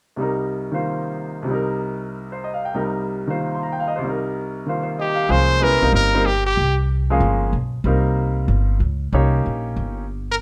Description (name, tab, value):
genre	modal jazz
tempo	188 BPM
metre	4/4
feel	swing 64% on 8ths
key	C phrygian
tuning	A4 = 440 Hz
part	bright concert grand piano	accompaniment	0.2-10.0 s	C2 to C6	-25 LUFS	equal	none
part	brilliant trumpet	melody	5.0-6.8, 10.3-10.4 s	G4 to C5	-21 LUFS	equal	plate reverb
part	upright bass	bass	5.3-10.4 s	G1 to Db2	-22 LUFS	equal	none
room	light reverb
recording	none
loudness	-21 LUFS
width	mono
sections	0.2-5.3 A section; 5.3-10.4 B section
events	none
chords	0.2 Cm7